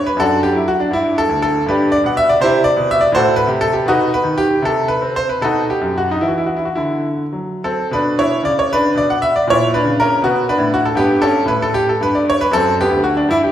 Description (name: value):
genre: classical, baroque-style suite movement for grand piano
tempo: 70-84 BPM (dotted quarters)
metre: 6/8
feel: rubato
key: B minor from 7.9 s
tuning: A4 = 442 Hz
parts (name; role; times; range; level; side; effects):
- bright grand piano; solo; 0.0-13.5 s; D2 to F#5; -13 LUFS; equal; none
room: wet recital hall reverb, RT60 1.7 s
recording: heard from further back in the room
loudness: -13 LUFS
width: side -11 dB against mid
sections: 0.0-7.9 A section; 7.9-13.5 A section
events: none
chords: 0.2 D/F#; 0.9 G5; 1.6 G; 2.4 C; 3.1 F#dim/A; 3.8 B; 4.6 N.C.; 5.4 B; 6.2 D9; 7.9 Bm; 9.4 A#dim; 10.2 Bm; 11.0 G; 12.5 D7/F#